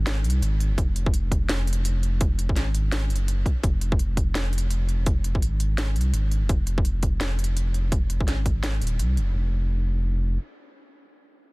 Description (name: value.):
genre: half-time drum and bass.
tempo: 168 BPM.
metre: 4/4.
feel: swing 60% on 16ths, half-time.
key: F phrygian.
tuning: A4 = 440 Hz.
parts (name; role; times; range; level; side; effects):
saturated sub bass; bass; 0.0-10.4 s; Eb1 to C2; -23 LUFS; equal; tube saturation.
drum and bass drum kit; drums; 0.1-9.3 s; hi-hat, snare drum; -32 LUFS; equal; none.
electronic kick drum; drums; 0.8-8.5 s; none; -23 LUFS; equal; none.
room: little or no reverb.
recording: dense, heavily limited modern master.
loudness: -22 LUFS.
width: side -25 dB against mid.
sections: 0.0-9.3 A section; 9.3-11.5 B section.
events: none.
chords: none.